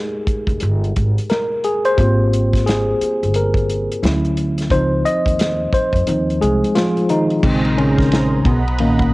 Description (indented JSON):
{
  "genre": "R&B, neo-soul",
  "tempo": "88 BPM",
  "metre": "4/4",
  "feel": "swing 62% on 16ths",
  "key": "unclear",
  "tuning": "A4 = 441 Hz",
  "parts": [
    { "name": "tine electric piano", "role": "accompaniment", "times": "0.0-9.1 s", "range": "A#2 to Eb5", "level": "-17 LUFS", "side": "left 1 dB", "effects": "auto-pan, cassette tape" },
    { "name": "upright bass", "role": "bass", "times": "0.3-9.1 s", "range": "F1 to F2", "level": "-19 LUFS", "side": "equal", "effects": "none" },
    { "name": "warm soul drum kit", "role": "drums", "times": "0.3-9.1 s", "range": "crash cymbal, hi-hat, kick drum, ride cymbal, snare drum", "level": "-21 LUFS", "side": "equal", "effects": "cassette tape" },
    { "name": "warm analog pad", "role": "sustained chords", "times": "7.4-9.1 s", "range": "Ab4 to B5", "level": "-25 LUFS", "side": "right 2 dB", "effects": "chorus, cassette tape" }
  ],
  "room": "light reverb, small room ambience",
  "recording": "home recording on cassette",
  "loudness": "-14 LUFS",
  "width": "side -20 dB against mid",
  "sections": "0.0-7.4 A section; 7.4-9.1 B section",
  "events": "tine electric piano solo 0.0-7.4, 7.4-9.1",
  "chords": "0.0 Fm9 (rootless); 2.0 Abmaj13; 4.0 Dmaj9; 4.7 Dbmaj9 (rootless); 7.4 Bbm9; 8.5 Bmaj7",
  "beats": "0.61 1.30 | 1.98 2.66 3.34 4.02 | 4.71 5.39 6.07 6.75 | 7.43 8.11 8.80"
}